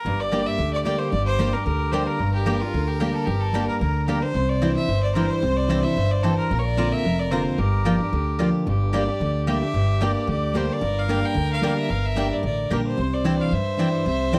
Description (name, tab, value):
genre	bluegrass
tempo	222 BPM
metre	4/4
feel	swing 55% on 8ths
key	G dorian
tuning	A4 = 439 Hz
part	rich fiddle	melody	0.0-14.4 s	F4 to G5	-30 LUFS	equal	none
part	upright bass	bass	0.0-14.4 s	F1 to G2	-28 LUFS	equal	none
part	clear fiddle	second line	0.1-14.4 s	G4 to C5	-33 LUFS	equal	none
part	picked steel-string acoustic guitar	accompaniment	0.1-14.4 s	F2 to G4	-26 LUFS	equal	none
part	mandolin	stabs	0.3-14.4 s	Bb3 to Bb5	-33 LUFS	equal	none
room	light reverb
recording	dry, close 1970s-style studio recording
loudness	-23 LUFS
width	mono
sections	0.0-8.7 A section; 8.7-14.4 A section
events	none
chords	0.0 Gm; 4.4 Cadd9; 6.5 Bbadd9; 7.6 Gm7; 8.7 Gm; 13.0 Cadd9